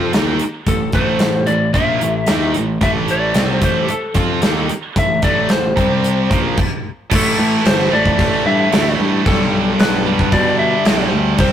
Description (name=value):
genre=hard rock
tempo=112 BPM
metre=4/4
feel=straight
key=A minor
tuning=A4 = 440 Hz
part: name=lightly driven lead guitar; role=melody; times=0.0-11.5 s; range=G4 to E5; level=-20 LUFS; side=left 2 dB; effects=none
part: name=sludgy distorted guitar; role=riff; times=0.0-11.5 s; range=G2 to F4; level=-23 LUFS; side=left 6 dB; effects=overdrive
part: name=tight distorted guitar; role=riff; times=0.0-11.5 s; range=G2 to F4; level=-20 LUFS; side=right 5 dB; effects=distortion
part: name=picked electric bass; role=bass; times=0.0-11.5 s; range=G1 to B2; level=-20 LUFS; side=equal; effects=none
part: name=gated 80s drum kit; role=drums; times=0.1-11.5 s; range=crash cymbal, hi-hat, kick drum, snare drum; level=-18 LUFS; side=equal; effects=none
room=moderate stone room reverb, RT60 1.2 s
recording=rough rehearsal-room recording, warm saturation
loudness=-13 LUFS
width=side -9 dB against mid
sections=0.0-7.1 A section; 7.1-11.5 B section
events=stop 6.6-7.1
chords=0.0 Am; 5.8 C5; 6.3 Bb5; 6.8 N.C.; 7.1 A5; 9.3 G/B